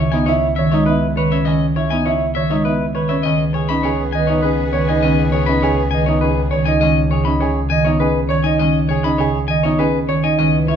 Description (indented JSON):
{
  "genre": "classical, minimalist pattern music",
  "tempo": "101 BPM",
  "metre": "3/4",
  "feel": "straight",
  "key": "unclear",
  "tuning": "A4 = 438 Hz",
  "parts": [
    { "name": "clean electric guitar", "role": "melody", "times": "0.0-10.8 s", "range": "B4 to B5", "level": "-22 LUFS", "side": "left 8 dB", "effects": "none" },
    { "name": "buzzing marimba with medium mallets", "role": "accompaniment", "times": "0.0-10.8 s", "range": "C#3 to D#4", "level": "-18 LUFS", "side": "right 1 dB", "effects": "none" },
    { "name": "clear grand piano", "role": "arpeggios", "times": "0.0-10.8 s", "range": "C#4 to D#5", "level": "-20 LUFS", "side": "right 4 dB", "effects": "none" },
    { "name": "clear double bass", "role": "bass", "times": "0.0-10.8 s", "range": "C#2", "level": "-22 LUFS", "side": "equal", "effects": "none" },
    { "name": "warm clarinet", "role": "second line", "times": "3.3-6.6, 10.4-10.8 s", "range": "B4", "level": "-28 LUFS", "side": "left 1 dB", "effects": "none" },
    { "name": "warm symphonic violin section", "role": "sustained chords", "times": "3.3-6.6, 10.4-10.8 s", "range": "B3 to G#4", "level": "-28 LUFS", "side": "left 5 dB", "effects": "none" }
  ],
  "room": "moderate large studio reverb, RT60 1.1 s",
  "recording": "heard from further back in the room, nothing above 7.9 kHz",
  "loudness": "-14 LUFS",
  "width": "side -8 dB against mid",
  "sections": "0.0-10.8 A section",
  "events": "none",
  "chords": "0.0 C#m7; 3.3 G#m/C#"
}